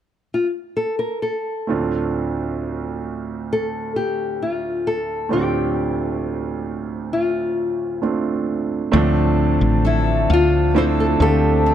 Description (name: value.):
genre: pop.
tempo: 66 BPM.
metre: 4/4.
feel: straight.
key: D minor.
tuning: A4 = 441 Hz.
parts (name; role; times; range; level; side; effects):
nylon-string guitar; melody; 0.3-11.7 s; E4 to C5; -22 LUFS; left 2 dB; slapback echo.
warm concert grand piano; accompaniment; 1.7-11.7 s; D2 to G4; -22 LUFS; right 4 dB; none.
dark brass ensemble; sustained chords; 8.9-11.7 s; F3 to A5; -27 LUFS; right 1 dB; none.
picked steel-string acoustic guitar; arpeggios; 8.9-11.7 s; D3 to A4; -23 LUFS; left 11 dB; none.
woody fretless electric bass; bass; 8.9-11.7 s; A1 to D2; -19 LUFS; left 1 dB; none.
room: small room reverb.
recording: dry, close 1970s-style studio recording.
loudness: -18 LUFS.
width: side -10 dB against mid.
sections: 0.0-1.7 A section; 1.7-8.9 B section; 8.9-11.7 C section.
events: none.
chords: 0.0 N.C.; 1.7 Dm7.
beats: 0.79 | 1.70 2.61 3.51 4.41 | 5.31 6.21 7.11 8.02 | 8.94 9.85 10.76 11.66.